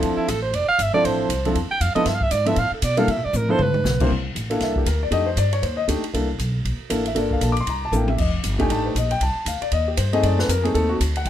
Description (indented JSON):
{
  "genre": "jazz, small-group swing and bop",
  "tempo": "235 BPM",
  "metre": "4/4",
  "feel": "swing 60% on 8ths",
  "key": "C mixolydian",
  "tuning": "A4 = 442 Hz",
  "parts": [
    { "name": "warm concert grand piano", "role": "accompaniment", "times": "0.0-11.3 s", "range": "C3 to D6", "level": "-23 LUFS", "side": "left 2 dB", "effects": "none" },
    { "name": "upright bass", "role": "bass", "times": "0.0-11.3 s", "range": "F1 to C3", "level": "-24 LUFS", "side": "equal", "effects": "none" },
    { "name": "open jazz drum kit", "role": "drums", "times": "0.0-11.3 s", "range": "crash cymbal, hi-hat, kick drum, ride cymbal, snare drum, toms", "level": "-28 LUFS", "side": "equal", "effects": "none" },
    { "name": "breathy alto saxophone", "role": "second line", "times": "0.2-4.1 s", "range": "E4 to G5", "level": "-22 LUFS", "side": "right 3 dB", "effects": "none" }
  ],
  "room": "moderate club reverb, RT60 0.7 s",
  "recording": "none",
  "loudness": "-19 LUFS",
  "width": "side -11 dB against mid",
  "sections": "0.0-4.1 A section; 4.1-11.3 A section",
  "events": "alto saxophone solo 0.0-4.1; drum fill 3.3-3.8, 7.9",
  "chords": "0.0 Dm7; 2.1 G13; 3.1 C13; 3.6 G6; 4.1 C13; 5.1 F13; 6.1 C13; 7.2 Gm7; 7.7 C13; 8.2 F13; 10.2 F#dim7"
}